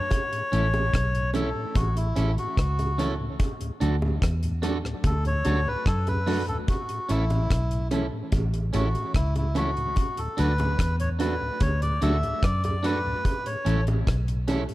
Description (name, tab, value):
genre	roots reggae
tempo	73 BPM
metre	4/4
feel	straight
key	A major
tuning	A4 = 440 Hz
part	melodica	melody	0.0-13.8 s	E4 to E5	-30 LUFS	left 1 dB	tape echo
part	vintage muted fingered electric bass	bass	0.0-14.7 s	A1 to F#2	-25 LUFS	equal	none
part	deep reggae drum kit	drums	0.1-14.7 s	hi-hat, kick drum, rim click	-27 LUFS	equal	none
part	bongos	percussion	0.1-14.7 s	none	-36 LUFS	right 2 dB	none
part	mellow tonewheel organ	accompaniment	0.3-14.7 s	D2 to D4	-34 LUFS	left 2 dB	chorus vibrato, slow rotary speaker, tape echo
part	electric guitar at the edge of break-up	accompaniment	0.5-14.6 s	C#4 to A4	-33 LUFS	right 4 dB	wide subtle chorus, tape echo
room	small room ambience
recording	dark, warm production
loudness	-23 LUFS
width	side -17 dB against mid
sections	0.0-14.7 A section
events	melodica solo 0.0-14.7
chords	0.1 A; 3.4 D; 6.7 A; 10.0 D; 13.3 A